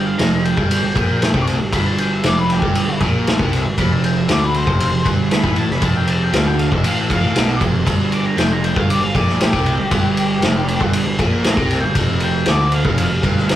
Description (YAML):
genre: psychedelic rock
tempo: 117 BPM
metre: 4/4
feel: straight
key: unclear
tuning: A4 = 440 Hz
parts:
  - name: octave-fuzz lead guitar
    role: melody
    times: 0.0-13.6 s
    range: G4 to D6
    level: -23 LUFS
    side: left 2 dB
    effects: distortion
  - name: biting overdriven guitar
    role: riff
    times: 0.0-13.6 s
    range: F2 to D3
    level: -20 LUFS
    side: right 2 dB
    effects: none
  - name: fuzz picked electric bass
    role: bass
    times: 0.0-13.6 s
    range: F1 to D2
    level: -21 LUFS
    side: equal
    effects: overdrive
  - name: vintage drum kit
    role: drums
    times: 0.2-13.6 s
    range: kick drum, ride cymbal, snare drum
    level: -18 LUFS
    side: equal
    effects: none
room: wet booth ambience, RT60 0.2 s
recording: rough rehearsal-room recording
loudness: -14 LUFS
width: side -12 dB against mid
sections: 0.0-13.6 A section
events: lead electric guitar solo 0.0-13.6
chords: 0.0 Fsus24; 3.8 F5; 7.9 Fsus24; 12.0 F5